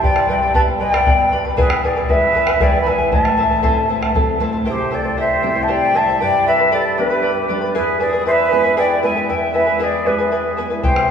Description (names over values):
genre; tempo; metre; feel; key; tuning
andean folk, Andean ensemble; 78 BPM (dotted quarters); 6/8; straight; unclear; A4 = 440 Hz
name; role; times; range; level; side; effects
mellow quena; melody; 0.0-11.1 s; B4 to B5; -17 LUFS; left 1 dB; none
breathy bright large quena; second line; 0.0-11.1 s; G4 to G#5; -22 LUFS; right 3 dB; none
charango; accompaniment; 0.0-11.1 s; E4 to B5; -22 LUFS; left 2 dB; none
nylon-string guitar; accompaniment; 0.0-11.1 s; E2 to E5; -25 LUFS; equal; none
bombo; percussion; 0.0-4.3, 10.8-11.1 s; none; -21 LUFS; equal; none
room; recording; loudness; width
wet cathedral reverb, RT60 5.5 s; recorded in a church or concert hall, small room ambience; -14 LUFS; side -7 dB against mid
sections
0.0-4.7 A section; 4.7-11.1 A section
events
nylon-string guitar fill 3.9-4.7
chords
0.0 G; 1.6 E; 3.1 Am; 4.7 C; 6.2 G; 7.8 E